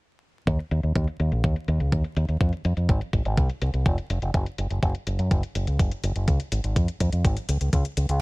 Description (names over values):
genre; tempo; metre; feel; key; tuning
italo disco; 124 BPM; 4/4; straight; Db major; A4 = 440 Hz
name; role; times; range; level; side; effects
fingered electric bass with an envelope filter; bass; 0.5-8.2 s; F1 to Gb2; -24 LUFS; equal; low-pass filter
electronic hi-hat; drums; 0.5-8.2 s; none; -39 LUFS; left 5 dB; overdrive, low-pass filter on hats
electronic kick drum; drums; 0.5-7.8 s; none; -23 LUFS; equal; overdrive
room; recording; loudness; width
little or no reverb; bright 1980s-style digital production, vinyl crackle; -22 LUFS; side -26 dB against mid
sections
0.5-8.2 A section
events
filter sweep on drum 0.5-8.2; filter sweep on fingered electric bass 0.5-8.2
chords
none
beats
| 0.47 0.95 1.44 1.92 | 2.41 2.89 3.38 3.86 | 4.34 4.83 5.31 5.79 | 6.28 6.76 7.25 7.73